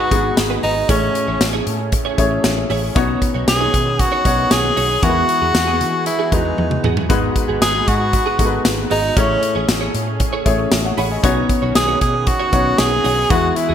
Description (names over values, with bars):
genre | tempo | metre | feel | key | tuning
1980s-style pop | 116 BPM | 4/4 | straight | unclear | A4 = 441 Hz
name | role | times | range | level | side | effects
clear tenor saxophone | melody | 0.0-13.7 s | C#4 to G#4 | -18 LUFS | equal | ping-pong delay
clear grand piano | accompaniment | 0.0-13.7 s | G#2 to B5 | -21 LUFS | left 4 dB | none
lush unison pad | sustained chords | 0.0-13.7 s | D#3 to B4 | -28 LUFS | right 1 dB | chorus
direct-recorded clean electric guitar | riff | 0.0-13.7 s | B3 to C#5 | -26 LUFS | right 8 dB | ensemble chorus
vintage muted fingered electric bass | bass | 0.1-13.7 s | G#1 to E3 | -23 LUFS | equal | none
modern studio drum kit | drums | 0.1-13.7 s | hi-hat, kick drum, snare drum, tambourine, toms | -19 LUFS | equal | gated reverb
room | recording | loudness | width
moderate plate reverb, RT60 1.1 s, small room ambience | bright 1980s-style digital production | -14 LUFS | side -9 dB against mid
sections
0.0-13.7 A section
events
drum fill 6.6-7.1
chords
0.0 G#m7; 0.9 Amaj7; 3.0 Badd9; 5.0 Eadd9; 7.1 G#m7; 9.2 Amaj7; 11.2 Badd9